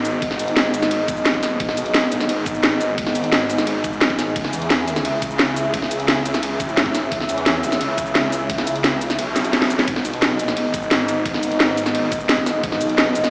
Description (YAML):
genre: dark technical drum and bass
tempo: 174 BPM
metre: 4/4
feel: straight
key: G# minor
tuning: A4 = 440 Hz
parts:
  - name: dark analog pad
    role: sustained chords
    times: 0.0-13.3 s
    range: B3 to E5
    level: -22 LUFS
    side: equal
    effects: chorus, sidechain pumping
  - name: snarling distorted saw bass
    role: bass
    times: 0.0-13.3 s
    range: D#1 to E2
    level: -24 LUFS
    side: equal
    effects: distortion, overdrive
  - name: drum and bass drum kit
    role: drums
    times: 0.0-13.3 s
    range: cabasa, hi-hat, ride cymbal, snare drum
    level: -20 LUFS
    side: equal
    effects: none
  - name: electronic kick drum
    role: drums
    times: 0.2-12.7 s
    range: none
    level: -29 LUFS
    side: equal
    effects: none
room: moderate lush hall reverb, RT60 1.9 s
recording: played on a big sound system in a bare room, large studio reverb, small speaker sound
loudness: -17 LUFS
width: side -33 dB against mid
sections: 0.0-13.3 A section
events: kick drops out 9.2-9.9; drum fill 9.4-9.9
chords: 0.0 G#m; 4.4 C#m; 9.9 G#m